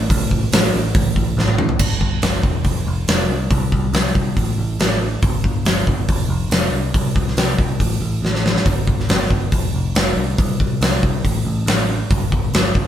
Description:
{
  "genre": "hard rock",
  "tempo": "140 BPM",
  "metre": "4/4",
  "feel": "straight",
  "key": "unclear",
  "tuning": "A4 = 440 Hz",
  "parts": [
    { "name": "picked electric bass", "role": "bass", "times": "0.0-12.9 s", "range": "E1 to C2", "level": "-21 LUFS", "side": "equal", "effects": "none" },
    { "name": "huge arena drum kit", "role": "drums", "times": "0.1-12.9 s", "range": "crash cymbal, hi-hat, kick drum, snare drum, toms", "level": "-17 LUFS", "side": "equal", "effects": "none" }
  ],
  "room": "moderate studio reverb, RT60 0.6 s",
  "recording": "band playing live in one room",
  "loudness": "-16 LUFS",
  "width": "side -10 dB against mid",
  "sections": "0.0-1.8 A section; 1.8-12.9 B section",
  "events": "drum fill 1.4-1.8, 8.2-8.7",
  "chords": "none"
}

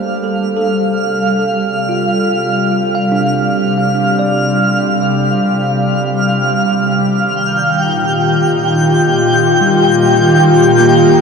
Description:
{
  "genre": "ambient",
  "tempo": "73 BPM",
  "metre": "4/4",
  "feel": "straight",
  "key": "unclear",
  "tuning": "A4 = 441 Hz",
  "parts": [
    { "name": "airy breathy pad", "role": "sustained chords", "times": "0.0-11.2 s", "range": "Bb2 to A4", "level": "-13 LUFS", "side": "equal", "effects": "chorus" },
    { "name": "bell-like tine electric piano", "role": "arpeggios", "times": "0.0-11.2 s", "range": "G3 to F5", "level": "-20 LUFS", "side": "right 1 dB", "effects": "medium stereo tremolo, tape echo" },
    { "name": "twinkling granular texture", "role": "texture", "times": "0.0-11.2 s", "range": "F5 to G5", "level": "-16 LUFS", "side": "equal", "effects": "built-in reverb" }
  ],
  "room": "wet huge ambient reverb, RT60 7.6 s",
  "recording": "none",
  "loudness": "-11 LUFS",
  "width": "side -5 dB against mid",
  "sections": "0.0-11.2 A section",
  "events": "fade-in on analog synth pad 0.0-11.2; fade-in on tine electric piano 0.0-11.2; fade-in on synth texture 0.0-11.2",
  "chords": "0.0 Gm7; 0.7 C5; 7.3 Ebadd9"
}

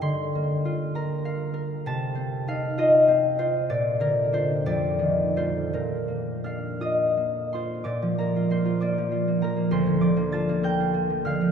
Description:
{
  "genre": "classical, solo harp piece",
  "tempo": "54-67 BPM (dotted quarters)",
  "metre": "6/8",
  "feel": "rubato",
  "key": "Bb major",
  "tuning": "A4 = 439 Hz",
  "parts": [
    { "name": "concert harp", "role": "solo", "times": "0.0-11.5 s", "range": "D2 to A6", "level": "-22 LUFS", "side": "equal", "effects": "none" }
  ],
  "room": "wet cathedral reverb, RT60 5.0 s",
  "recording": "in a vast, echoing space, lossy compression artefacts",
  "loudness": "-22 LUFS",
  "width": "side -7 dB against mid",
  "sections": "0.0-7.9 A section; 7.9-11.5 A section",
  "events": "none",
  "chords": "0.0 Bb/D; 1.9 F7/C; 3.7 Bb; 4.7 F7; 5.7 Bb; 9.7 Bb/D"
}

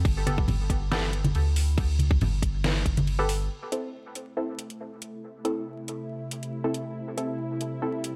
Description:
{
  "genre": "deep dubstep",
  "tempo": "139 BPM",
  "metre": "4/4",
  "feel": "half-time",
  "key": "A minor",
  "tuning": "A4 = 440 Hz",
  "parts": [
    { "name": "soft dub sub bass", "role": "bass", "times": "0.0-3.5 s", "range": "G1 to D2", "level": "-28 LUFS", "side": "equal", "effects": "none" },
    { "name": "dubstep drum kit", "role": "drums", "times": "0.1-8.1 s", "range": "crash cymbal, hi-hat, snare drum", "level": "-36 LUFS", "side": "equal", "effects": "none" },
    { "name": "electronic kick drum", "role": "drums", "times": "0.1-2.9 s", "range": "none", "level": "-27 LUFS", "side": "equal", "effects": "overdrive" },
    { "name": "filtered dub chord stab", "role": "stabs", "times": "0.3-7.9 s", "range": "B3 to A4", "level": "-35 LUFS", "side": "equal", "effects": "chorus, dub echo" },
    { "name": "congas", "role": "percussion", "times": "0.3-3.1 s", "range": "none", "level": "-31 LUFS", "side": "equal", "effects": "none" },
    { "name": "bowed-like drone", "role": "sustained chords", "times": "4.5-8.2 s", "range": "C3 to E4", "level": "-37 LUFS", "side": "equal", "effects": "built-in reverb" }
  ],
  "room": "light reverb",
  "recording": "vinyl crackle",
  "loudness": "-28 LUFS",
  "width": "mono",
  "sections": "0.0-3.5 A section; 3.5-8.2 B section",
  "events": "drop 0.0-3.5; filter sweep on synth drone 3.5-8.2",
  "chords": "0.0 Gadd9; 3.5 Am"
}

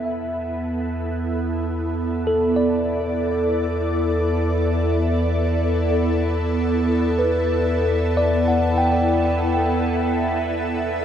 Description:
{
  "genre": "ambient",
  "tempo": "free time",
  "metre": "none",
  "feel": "none",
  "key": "unclear",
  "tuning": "A4 = 440 Hz",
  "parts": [
    { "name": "ethereal airy pad", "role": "sustained chords", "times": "0.0-11.0 s", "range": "B3 to E5", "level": "-22 LUFS", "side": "right 1 dB", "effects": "ensemble chorus, built-in reverb, phaser, shimmer reverb" },
    { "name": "tine electric piano", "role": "arpeggios", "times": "0.0-11.0 s", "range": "A4 to G5", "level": "-24 LUFS", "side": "left 1 dB", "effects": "tape echo, shimmer reverb" },
    { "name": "round analog bass", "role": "bass", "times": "0.0-11.0 s", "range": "E2", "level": "-25 LUFS", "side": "equal", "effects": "none" }
  ],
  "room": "wet huge ambient reverb, RT60 7.9 s",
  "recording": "none",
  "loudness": "-19 LUFS",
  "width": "side -9 dB against mid",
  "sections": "0.0-11.0 A section",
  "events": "none",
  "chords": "0.0 Em7"
}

